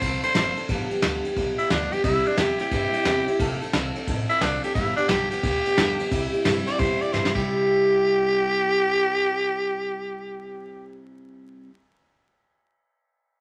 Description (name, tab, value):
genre	rockabilly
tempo	177 BPM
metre	4/4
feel	swing 64% on 8ths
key	C major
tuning	A4 = 443 Hz
part	raspy tenor saxophone	melody	0.0-11.0 s	D4 to D5	-26 LUFS	equal	none
part	picked steel-string acoustic guitar	accompaniment	0.0-11.7 s	G2 to A4	-29 LUFS	equal	none
part	upright bass	bass	0.0-11.7 s	F1 to G2	-36 LUFS	equal	none
part	soft brush drum kit	drums	0.0-7.4 s	crash cymbal, kick drum, ride cymbal, snare drum	-29 LUFS	equal	none
room	wet small room reverb, RT60 0.5 s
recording	vinyl crackle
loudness	-23 LUFS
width	mono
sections	0.0-7.5 A section; 7.5-10.2 B section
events	drum fill 7.1-7.5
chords	0.0 F; 0.7 G7; 2.0 C; 3.4 F; 4.8 G7; 6.1 C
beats	0.01 0.35 | 0.69 1.03 1.36 1.70 | 2.04 2.38 2.72 3.06 | 3.40 3.74 4.08 4.42 | 4.76 5.10 5.43 5.78 | 6.12 6.46 6.79 7.13 | 7.47 7.82 8.15 8.50 | 8.84 9.18 9.52 9.86